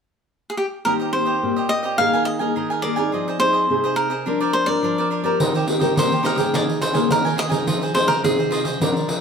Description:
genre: samba and choro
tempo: 106 BPM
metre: 4/4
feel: straight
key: Eb major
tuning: A4 = 441 Hz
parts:
  - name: cavaquinho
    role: melody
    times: 0.5-9.2 s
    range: G4 to F5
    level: -22 LUFS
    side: equal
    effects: none
  - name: cavaquinho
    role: accompaniment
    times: 0.8-9.1 s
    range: D4 to Ab5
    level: -26 LUFS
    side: right 4 dB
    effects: none
  - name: nylon-string guitar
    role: accompaniment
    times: 0.9-9.2 s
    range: Bb2 to Bb4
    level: -22 LUFS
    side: left 2 dB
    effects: none
  - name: pandeiro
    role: percussion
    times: 5.4-9.2 s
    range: none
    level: -22 LUFS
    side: right 1 dB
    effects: none
room: wet studio reverb, RT60 0.8 s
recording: heard from further back in the room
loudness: -18 LUFS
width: side -6 dB against mid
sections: 0.9-5.4 A section; 5.4-9.2 B section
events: none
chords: 0.0 N.C.; 0.9 Eb6; 2.0 Absus2/Eb; 3.1 Fm7; 4.3 Bbadd9/F; 5.4 Eb6; 6.5 Absus2/Eb; 7.7 Fm7

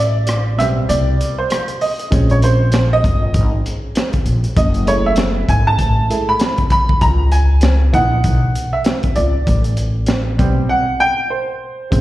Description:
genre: hip hop, jazz-hop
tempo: 98 BPM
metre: 4/4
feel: swing 60% on 16ths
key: unclear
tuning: A4 = 440 Hz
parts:
  - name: clear upright piano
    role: accompaniment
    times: 0.0-12.0 s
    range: Db3 to Cb6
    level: -18 LUFS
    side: right 2 dB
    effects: slapback echo
  - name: upright bass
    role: bass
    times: 0.0-12.0 s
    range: Gb1 to Db2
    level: -16 LUFS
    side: equal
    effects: none
  - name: crunchy breakbeat drum kit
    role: drums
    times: 0.3-12.0 s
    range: hi-hat, kick drum, rim click, snare drum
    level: -18 LUFS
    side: equal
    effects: none
room: little or no reverb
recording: live gig heard through the venue's PA, recital hall reverb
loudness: -13 LUFS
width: side -15 dB against mid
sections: 0.0-11.9 A section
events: break 0.0-2.1; upright piano solo 0.0-11.9; silent gap 10.7-11.9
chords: 0.0 Am9; 2.1 Bbm9; 4.6 Gbm9; 7.0 Dbm9; 9.5 Am9

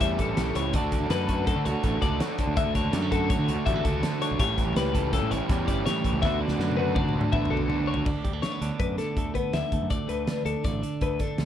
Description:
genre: math rock and midwest emo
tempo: 164 BPM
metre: 5/4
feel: straight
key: D major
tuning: A4 = 441 Hz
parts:
  - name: twelve-string electric guitar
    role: accompaniment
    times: 0.0-11.4 s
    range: D2 to A4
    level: -31 LUFS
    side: right 6 dB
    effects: none
  - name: twelve-string electric guitar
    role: arpeggios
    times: 0.0-11.4 s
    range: A4 to E5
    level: -31 LUFS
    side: left 10 dB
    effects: none
  - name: raw garage guitar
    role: riff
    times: 0.0-8.1 s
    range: A2 to A4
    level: -30 LUFS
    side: right 1 dB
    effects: overdrive
  - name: growling fingered electric bass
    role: bass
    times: 0.0-11.4 s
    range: G1 to D3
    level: -30 LUFS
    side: equal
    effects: overdrive
  - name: loose indie drum kit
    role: drums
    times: 0.0-11.4 s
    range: crash cymbal, hi-hat, kick drum, snare drum, toms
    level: -29 LUFS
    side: equal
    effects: none
room: small room ambience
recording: dark, warm production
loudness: -24 LUFS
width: side -10 dB against mid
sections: 0.0-8.1 A section; 8.1-11.4 B section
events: drum fill 6.2-8.1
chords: 0.0 A7; 0.7 Dmaj7; 4.4 A7; 6.2 D69; 8.1 Bm7/D; 9.9 D5

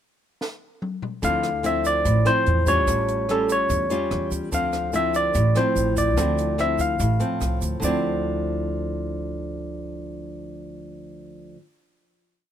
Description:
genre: bossa nova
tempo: 146 BPM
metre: 4/4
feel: straight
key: D minor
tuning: A4 = 440 Hz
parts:
  - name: compact cocktail drum kit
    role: drums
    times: 0.4-7.7 s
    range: hi-hat, kick drum, rim click, snare drum, toms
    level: -31 LUFS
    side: equal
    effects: none
  - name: barky tine electric piano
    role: melody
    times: 1.2-11.6 s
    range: A4 to F5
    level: -24 LUFS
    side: equal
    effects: none
  - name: nylon-string guitar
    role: accompaniment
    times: 1.2-11.6 s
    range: A2 to F4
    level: -26 LUFS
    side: equal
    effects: none
  - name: upright bass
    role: bass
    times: 1.2-11.5 s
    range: A1 to E2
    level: -26 LUFS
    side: right 1 dB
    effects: none
  - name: tube shaker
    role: percussion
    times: 1.2-7.9 s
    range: none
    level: -36 LUFS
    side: right 7 dB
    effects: none
room: little or no reverb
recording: minimal, uncompressed stereo recording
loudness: -20 LUFS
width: side -10 dB against mid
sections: 0.0-1.2 pickup bar; 1.2-7.8 A section; 7.8-11.1 final chord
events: drum fill 0.4-1.2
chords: 0.0 N.C.; 1.2 Dm9; 2.9 A7b13; 4.5 Dm9

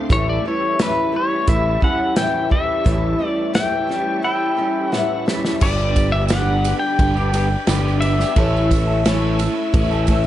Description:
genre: folk rock and heartland rock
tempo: 87 BPM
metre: 4/4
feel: straight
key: unclear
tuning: A4 = 440 Hz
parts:
  - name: picked twelve-string acoustic guitar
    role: accompaniment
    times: 0.0-10.3 s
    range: A2 to C#5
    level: -24 LUFS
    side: left 4 dB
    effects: none
  - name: bright tonewheel organ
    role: sustained chords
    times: 0.0-10.3 s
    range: G4 to E6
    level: -33 LUFS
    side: equal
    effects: slow rotary speaker, overdrive, chorus vibrato
  - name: electric guitar through a small old amp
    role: riff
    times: 0.0-10.2 s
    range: G2 to A4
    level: -25 LUFS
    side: right 4 dB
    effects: ensemble chorus
  - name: pedal steel guitar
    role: melody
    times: 0.1-10.3 s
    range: B4 to G5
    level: -22 LUFS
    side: left 2 dB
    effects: none
  - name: modern bright picked electric bass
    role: bass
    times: 0.1-10.3 s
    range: G1 to A1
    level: -20 LUFS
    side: right 1 dB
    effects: none
  - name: natural country drum kit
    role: drums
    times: 0.1-10.2 s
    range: crash cymbal, hi-hat, kick drum, ride cymbal, snare drum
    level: -21 LUFS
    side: equal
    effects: none
  - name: tambourine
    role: percussion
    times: 5.6-10.3 s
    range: none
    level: -37 LUFS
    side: right 14 dB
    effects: none
room: light reverb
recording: nothing above 11.0 kHz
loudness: -16 LUFS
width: side -12 dB against mid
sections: 0.0-5.6 A section; 5.6-10.3 B section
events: drum fill 4.9-5.6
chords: 0.1 A7; 5.6 G; 8.4 A

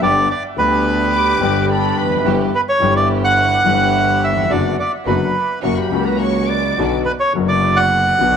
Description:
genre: tango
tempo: 107 BPM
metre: 4/4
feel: rubato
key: B minor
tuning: A4 = 440 Hz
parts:
  - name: bandoneon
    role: melody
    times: 0.0-8.4 s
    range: B4 to F#5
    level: -16 LUFS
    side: right 2 dB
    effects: tape echo
  - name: warm concert grand piano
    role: accompaniment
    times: 0.0-8.4 s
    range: F#1 to G4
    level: -19 LUFS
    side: left 8 dB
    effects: none
  - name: warm studio string section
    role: stabs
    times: 0.0-8.4 s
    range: A#3 to G4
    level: -26 LUFS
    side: right 9 dB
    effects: none
  - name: clear double bass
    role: bass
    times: 0.0-8.4 s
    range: E#1 to D2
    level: -22 LUFS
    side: right 2 dB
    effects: none
  - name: concert flute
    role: second line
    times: 1.1-6.9 s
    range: F#4 to D5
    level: -23 LUFS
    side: right 9 dB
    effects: none
  - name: rich studio violin section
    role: second line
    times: 1.1-6.9 s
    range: A#5 to D6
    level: -27 LUFS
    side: left 10 dB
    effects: none
room: moderate echo chamber reverb, RT60 2.1 s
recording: 1960s-style stereo with parts hard left and right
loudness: -14 LUFS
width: side -7 dB against mid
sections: 0.0-8.4 A section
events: none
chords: 0.0 G; 2.3 Em/G; 4.5 Bm/F#; 5.6 F#; 6.8 Bm

